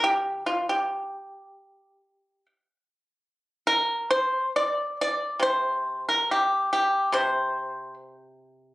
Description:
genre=chinese traditional, Chinese solo plucked strings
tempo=64-72 BPM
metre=4/4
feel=rubato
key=unclear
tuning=A4 = 440 Hz
part: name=pipa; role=solo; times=0.0-8.7 s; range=C3 to D5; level=-23 LUFS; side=equal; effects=none
room=light reverb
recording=recorded on a phone in the room, club reverb, compression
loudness=-23 LUFS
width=side -18 dB against mid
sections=0.0-3.6 A section; 3.6-8.7 B section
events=none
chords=none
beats=| 0.05 0.91 1.81 2.73 | 3.65 4.54 5.42 6.29 | 7.14 7.98

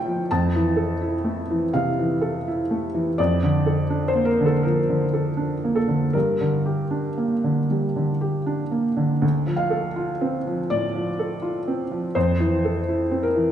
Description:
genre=neoclassical minimalist piano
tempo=77-84 BPM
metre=4/4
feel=rubato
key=D minor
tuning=A4 = 440 Hz
part: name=felt-muted upright piano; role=solo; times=0.0-13.5 s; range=D2 to A5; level=-20 LUFS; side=equal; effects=none
room=wet recital hall reverb, RT60 1.3 s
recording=recorded in a church or concert hall, nothing above 10.3 kHz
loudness=-20 LUFS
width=side -10 dB against mid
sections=0.0-9.2 A section; 9.2-13.5 A section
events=none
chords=0.3 Fmaj7; 3.2 Bbmaj7/F; 6.1 Gm; 9.2 Dm7; 12.2 Fmaj7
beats=| 0.29 1.01 1.73 2.46 | 3.18 3.90 4.63 5.38 | 6.14 6.92 7.69 8.46 | 9.23 9.97 10.70 11.43 | 12.15 12.87

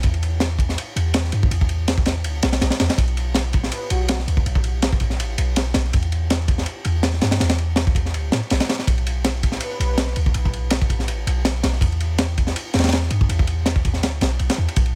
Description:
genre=drum and bass, jungle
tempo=163 BPM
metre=4/4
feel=swing 53% on 16ths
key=B minor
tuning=A4 = 439 Hz
part: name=warm 808-style bass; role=bass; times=0.0-15.0 s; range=A1 to A2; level=-24 LUFS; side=equal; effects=none
part: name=crunchy breakbeat drum kit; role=drums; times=0.0-14.9 s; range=kick drum, ride cymbal, snare drum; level=-23 LUFS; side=equal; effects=none
part: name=breathy flute-like synth lead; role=melody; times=3.7-4.2, 9.6-10.2 s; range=F#4 to B4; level=-36 LUFS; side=equal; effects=analog chorus, dub echo
part: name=wind-like tuned noise texture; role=texture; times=14.9-15.0 s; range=F#5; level=-57 LUFS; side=equal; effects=none
room=small room ambience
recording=none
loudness=-21 LUFS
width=mono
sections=0.0-14.8 A section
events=drop 0.0-14.8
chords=none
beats=| 0.04 0.41 0.78 1.15 | 1.51 1.88 2.25 2.62 | 2.98 3.35 3.72 4.09 | 4.46 4.83 5.19 5.56 | 5.93 6.30 6.67 7.03 | 7.40 7.77 8.14 8.51 | 8.88 9.24 9.61 9.98 | 10.35 10.71 11.08 11.45 | 11.82 12.19 12.56 12.92 | 13.29 13.66 14.03 14.40 | 14.76

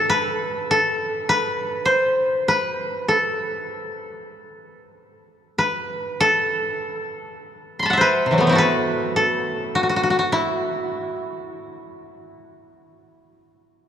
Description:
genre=japanese traditional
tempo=47-54 BPM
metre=4/4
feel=rubato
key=A kumoi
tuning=A4 = 440 Hz
part: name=koto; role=solo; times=0.0-13.7 s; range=C3 to C6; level=-19 LUFS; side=equal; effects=none
room=wet cathedral reverb, RT60 4.5 s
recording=dark, warm production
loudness=-19 LUFS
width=side -9 dB against mid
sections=0.0-5.6 A section; 5.6-13.9 B section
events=none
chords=none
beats=| 0.69 1.87 3.08 4.32 | 5.57 6.80 7.99 9.16 | 10.31 11.47 12.62

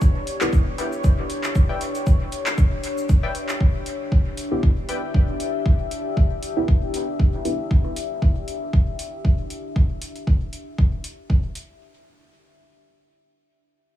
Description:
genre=dub techno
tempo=117 BPM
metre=4/4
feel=swing 55% on 16ths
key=E dorian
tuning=A4 = 440 Hz
part: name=deep dark ambient pad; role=sustained chords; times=0.0-9.7 s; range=D4 to E5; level=-30 LUFS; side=left 3 dB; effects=chorus, built-in reverb, sidechain pumping
part: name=deep house drum kit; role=drums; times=0.0-11.7 s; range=handclaps, hi-hat, shaker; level=-31 LUFS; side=left 1 dB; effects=overdrive, dub echo
part: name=electronic kick drum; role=drums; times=0.0-11.4 s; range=none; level=-18 LUFS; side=equal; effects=overdrive
part: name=deep mellow chord stab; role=stabs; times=0.4-0.6, 4.5-7.6 s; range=B3 to G4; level=-29 LUFS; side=equal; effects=chorus, phaser, sidechain pumping, dub echo
part: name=filtered dub chord stab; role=riff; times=0.8-5.0 s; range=B4 to G5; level=-35 LUFS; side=left 4 dB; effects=chorus, sidechain pumping, dub echo
room=little or no reverb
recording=small room ambience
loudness=-19 LUFS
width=side -12 dB against mid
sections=0.0-3.6 A section; 3.6-11.8 B section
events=none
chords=0.0 Em7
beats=0.01 0.53 1.04 | 1.55 2.07 2.58 3.09 | 3.60 4.12 4.63 5.14 | 5.66 6.17 6.68 7.19 | 7.71 8.22 8.73 9.25 | 9.76 10.27 10.78 11.30

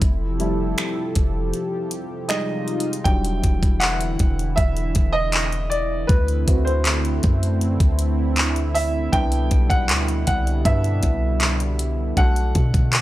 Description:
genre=contemporary R&B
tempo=79 BPM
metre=4/4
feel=straight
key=E minor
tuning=A4 = 438 Hz
part: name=warm baby grand piano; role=accompaniment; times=0.0-13.0 s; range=D3 to G5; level=-26 LUFS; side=equal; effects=none
part: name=warm analog pad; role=sustained chords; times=0.0-13.0 s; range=B2 to A4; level=-27 LUFS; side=right 1 dB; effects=chorus, sidechain pumping
part: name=warm 808-style bass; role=bass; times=0.0-13.0 s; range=E1 to B2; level=-22 LUFS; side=equal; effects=none
part: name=smooth R&B drum kit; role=drums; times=0.0-13.0 s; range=finger snaps, handclaps, hi-hat, kick drum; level=-20 LUFS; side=equal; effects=none
room=digital ambience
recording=dry, gritty hardware recording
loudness=-18 LUFS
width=side -15 dB against mid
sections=0.0-3.1 A section; 3.1-13.0 B section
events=grand piano solo 0.0-3.1, 3.1-13.0; break 1.5-3.1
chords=0.0 Fmaj9; 2.3 Fm7; 3.1 Em7; 6.1 D13; 9.1 Cmaj9; 12.2 Bm7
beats=| 0.02 0.78 1.54 2.29 | 3.06 3.81 4.57 5.33 | 6.09 6.85 7.61 8.37 | 9.13 9.89 10.65 11.41 | 12.17 12.93

